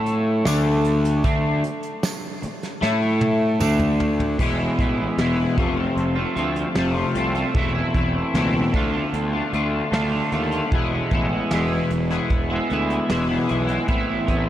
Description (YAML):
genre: psychedelic rock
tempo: 76 BPM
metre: 4/4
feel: straight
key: E phrygian dominant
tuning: A4 = 442 Hz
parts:
  - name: twangy electric guitar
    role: riff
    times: 0.0-14.5 s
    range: E2 to A4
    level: -21 LUFS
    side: left 1 dB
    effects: rotary speaker
  - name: fuzz picked electric bass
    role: bass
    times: 0.0-14.5 s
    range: E1 to A2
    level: -25 LUFS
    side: equal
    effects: overdrive
  - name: soft brush drum kit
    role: drums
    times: 0.1-14.5 s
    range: crash cymbal, hi-hat, kick drum, snare drum, toms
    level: -27 LUFS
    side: equal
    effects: none
  - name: tambourine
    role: percussion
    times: 0.5-3.8 s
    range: none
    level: -38 LUFS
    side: right 8 dB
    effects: none
room: moderate huge ambient reverb, RT60 6.2 s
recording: dreamy mix soaked in reverb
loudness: -19 LUFS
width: side -12 dB against mid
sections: 0.0-4.4 A section; 4.4-14.5 B section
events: drum fill 2.8-4.4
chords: 0.5 D5; 2.8 A5; 3.6 D5; 4.4 E; 5.6 F; 7.6 Amadd9/E; 8.7 Dm; 10.7 E; 13.9 Amadd9